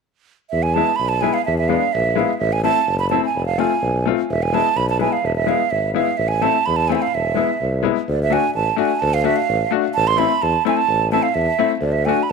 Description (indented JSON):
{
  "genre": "klezmer",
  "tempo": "127 BPM",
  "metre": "2/4",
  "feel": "straight",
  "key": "E phrygian dominant",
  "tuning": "A4 = 439 Hz",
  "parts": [
    { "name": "breathy mellow silver concert flute", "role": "melody", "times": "0.5-12.3 s", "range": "D5 to C6", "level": "-19 LUFS", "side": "right 9 dB", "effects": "tape echo" },
    { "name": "warm tuba", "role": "bass", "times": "0.5-12.3 s", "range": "E1 to E2", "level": "-22 LUFS", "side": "left 1 dB", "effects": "none" },
    { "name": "bright upright piano", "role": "accompaniment", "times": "0.8-12.2 s", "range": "G#3 to F#4", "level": "-21 LUFS", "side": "left 15 dB", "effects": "none" }
  ],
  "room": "moderate plate reverb, RT60 2.6 s",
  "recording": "1960s-style stereo with parts hard left and right",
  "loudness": "-16 LUFS",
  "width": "side -4 dB against mid",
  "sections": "0.5-8.1 A section; 8.1-12.3 B section",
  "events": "none",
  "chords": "0.5 E; 2.4 Am; 3.4 F; 4.3 E; 6.2 Am; 7.1 E; 8.1 D; 10.0 Am"
}